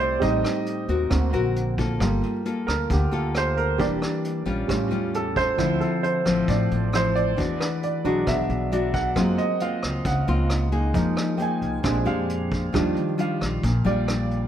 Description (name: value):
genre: bossa nova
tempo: 134 BPM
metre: 4/4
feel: straight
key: unclear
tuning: A4 = 439 Hz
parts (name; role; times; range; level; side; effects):
- clear baby grand piano; accompaniment; 0.0-14.5 s; F3 to Ab5; -26 LUFS; right 4 dB; none
- nylon-string guitar; accompaniment; 0.0-14.5 s; A2 to Bb4; -26 LUFS; left 4 dB; none
- upright bass; bass; 0.0-14.5 s; E1 to Gb2; -26 LUFS; equal; none
- vintage brush drum kit; drums; 0.0-14.4 s; hi-hat, kick drum, rim click; -31 LUFS; equal; none
room: light reverb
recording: none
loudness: -21 LUFS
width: side -10 dB against mid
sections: 0.0-14.5 A section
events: grand piano solo 0.0-14.5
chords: 0.2 Am7b5; 1.1 D7alt; 2.0 Gm9; 3.8 Em7b5; 4.7 A7b13; 5.6 Dm9; 7.4 E9; 9.2 Gbmaj9#11; 10.9 Fm7; 11.8 Bb13; 12.7 Ebmaj9